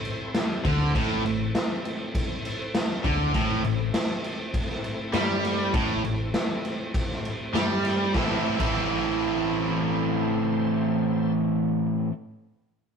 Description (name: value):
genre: classic rock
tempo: 100 BPM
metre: 4/4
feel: straight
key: A minor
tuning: A4 = 440 Hz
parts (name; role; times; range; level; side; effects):
- bright tonewheel organ; sustained chords; 0.0-11.3 s; A3 to C5; -38 LUFS; left 2 dB; overdrive, chorus vibrato, slow rotary speaker
- raw garage drum kit; drums; 0.0-8.8 s; crash cymbal, kick drum, snare drum; -27 LUFS; equal; none
- cranked stack guitar; riff; 0.6-12.1 s; A2 to A4; -30 LUFS; left 7 dB; overdrive
- distorted electric guitar; riff; 0.6-12.1 s; A2 to E4; -29 LUFS; right 1 dB; distortion
- hollow-body short-scale fingered electric bass; bass; 0.6-12.0 s; A1 to G2; -31 LUFS; left 1 dB; none
- overdriven semi-hollow guitar; riff; 0.7-12.1 s; A2 to E4; -28 LUFS; right 6 dB; spring reverb
room: moderate stone room reverb, RT60 1.0 s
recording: rough rehearsal-room recording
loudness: -23 LUFS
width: side -6 dB against mid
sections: 0.0-8.1 A section; 8.1-10.6 B section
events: none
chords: 0.0 Am